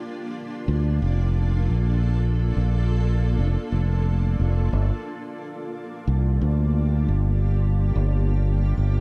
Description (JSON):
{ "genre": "ambient dub", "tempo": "89 BPM", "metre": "4/4", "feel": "swing 57% on 16ths", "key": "G minor", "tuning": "A4 = 441 Hz", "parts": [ { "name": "granular cloud pad", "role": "sustained chords", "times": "0.0-9.0 s", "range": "Bb3 to D5", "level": "-34 LUFS", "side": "equal", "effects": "built-in reverb" }, { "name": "fingered electric bass", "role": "bass", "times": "0.7-9.0 s", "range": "F1 to D2", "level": "-22 LUFS", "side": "equal", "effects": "none" } ], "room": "digital ambience", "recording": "none", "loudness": "-23 LUFS", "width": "mono", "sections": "0.0-9.0 A section", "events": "none", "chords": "0.0 Bbmaj7; 4.7 Gm7" }